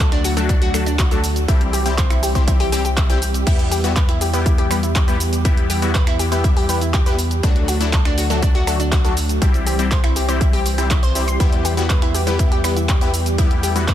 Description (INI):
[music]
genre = progressive house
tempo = 121 BPM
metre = 4/4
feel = straight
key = E minor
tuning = A4 = 441 Hz
[part]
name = warm analog pad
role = sustained chords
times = 0.0-13.9 s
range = D3 to G4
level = -27 LUFS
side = right 1 dB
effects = chorus, sidechain pumping
[part]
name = analog pluck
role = arpeggios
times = 0.0-13.9 s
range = D4 to C6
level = -25 LUFS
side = equal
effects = chorus, sidechain pumping, tape echo
[part]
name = round analog bass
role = bass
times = 0.0-13.9 s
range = C2 to E2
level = -22 LUFS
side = equal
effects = tube saturation, sidechain pumping
[part]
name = deep house drum kit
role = drums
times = 0.0-13.9 s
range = crash cymbal, finger snaps, handclaps, hi-hat, shaker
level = -25 LUFS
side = right 1 dB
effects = overdrive
[part]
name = electronic kick drum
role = drums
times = 0.0-13.9 s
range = none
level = -17 LUFS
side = equal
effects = overdrive
[part]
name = supersaw stab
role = stabs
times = 0.4-13.8 s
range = F#3 to G4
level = -24 LUFS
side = left 4 dB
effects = phaser, sidechain pumping, tape echo
[sound]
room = digital ambience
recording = dense, heavily limited modern master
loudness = -15 LUFS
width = side -11 dB against mid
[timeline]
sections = 0.0-13.9 A section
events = none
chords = 0.0 D; 1.5 C; 3.5 Em; 7.4 D; 9.4 C; 11.4 Em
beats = 0.00 0.49 0.99 | 1.48 1.98 2.48 2.97 | 3.47 3.96 4.46 4.96 | 5.45 5.95 6.44 6.94 | 7.43 7.93 8.43 8.92 | 9.42 9.91 10.41 10.90 | 11.40 11.90 12.39 12.89 | 13.38 13.88